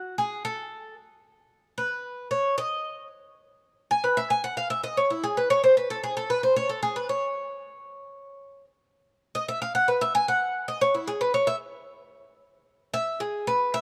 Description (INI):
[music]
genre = latin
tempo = 113 BPM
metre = 4/4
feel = straight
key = unclear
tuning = A4 = 439 Hz
[part]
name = Cuban tres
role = solo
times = 0.0-13.8 s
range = E4 to G#5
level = -26 LUFS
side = equal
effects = none
[sound]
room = moderate plate reverb, RT60 2.7 s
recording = dark, warm production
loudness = -26 LUFS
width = mono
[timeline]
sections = 0.0-13.8 A section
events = Cuban tres solo 0.0-13.8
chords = none